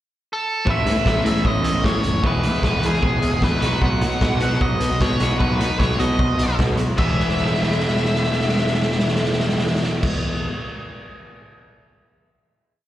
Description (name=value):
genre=indie rock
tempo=152 BPM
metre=4/4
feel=straight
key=E major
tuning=A4 = 441 Hz
part: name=nasal lead guitar with a parked wah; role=melody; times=0.3-10.1 s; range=G#4 to F#5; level=-25 LUFS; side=left 1 dB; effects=overdrive, slapback echo, digital delay
part: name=crunchy overdriven guitar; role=riff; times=0.7-10.5 s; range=E2 to F#4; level=-26 LUFS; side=right 4 dB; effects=lush chorus, slapback echo, digital delay
part: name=electric guitar through a small old amp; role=riff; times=0.7-10.5 s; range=E2 to G#4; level=-26 LUFS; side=left 4 dB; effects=slapback echo
part: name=growling picked electric bass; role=bass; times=0.7-10.1 s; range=E1 to B2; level=-23 LUFS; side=equal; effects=overdrive
part: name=raw garage drum kit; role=drums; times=0.7-11.6 s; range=crash cymbal, hi-hat, kick drum, snare drum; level=-22 LUFS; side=equal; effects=none
room=little or no reverb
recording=live gig heard through the venue's PA, recital hall reverb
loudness=-17 LUFS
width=side -13 dB against mid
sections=0.0-0.7 pickup bar; 0.7-7.0 pre-chorus; 7.0-10.1 final chord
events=drum fill 7.2-10.0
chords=0.0 N.C.; 0.7 Aadd9; 2.2 E; 3.6 B; 7.0 E